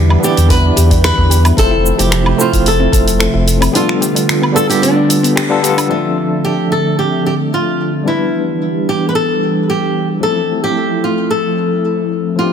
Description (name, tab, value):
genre	sunset chillout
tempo	111 BPM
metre	4/4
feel	straight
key	unclear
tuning	A4 = 440 Hz
part	flamenco guitar	melody	0.0-12.5 s	D4 to B4	-17 LUFS	left 1 dB	digital delay
part	tine electric piano	accompaniment	0.0-12.5 s	F3 to E5	-18 LUFS	moving between left 7 dB and right 8 dB	fast tremolo, auto-pan, low-pass filter, ping-pong delay
part	airy breathy pad	sustained chords	0.0-12.5 s	C3 to E5	-18 LUFS	equal	chorus
part	soft round pluck	arpeggios	0.0-5.8 s	B3 to A4	-23 LUFS	left 5 dB	chorus, ping-pong delay
part	warm sub bass	bass	0.0-3.7 s	F1 to E2	-13 LUFS	equal	none
part	deep house drum kit	drums	0.1-5.9 s	finger snaps, hi-hat, shaker, woodblock	-18 LUFS	right 1 dB	low-pass filter on hats, low-pass filter on perc, soft clipping on snare, low-pass filter on snare
part	electronic kick drum	drums	0.5-3.0 s	none	-15 LUFS	equal	overdrive
room	moderate concert hall reverb, RT60 2.5 s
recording	dense, heavily limited modern master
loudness	-11 LUFS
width	side -8 dB against mid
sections	0.0-5.9 A section; 5.9-12.5 B section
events	band accent 5.4; filter sweep on tine electric piano 5.9-12.5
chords	0.0 Em7; 1.6 Fmaj7; 3.7 G9; 5.9 Dm9; 8.1 Em7; 10.2 Fmaj7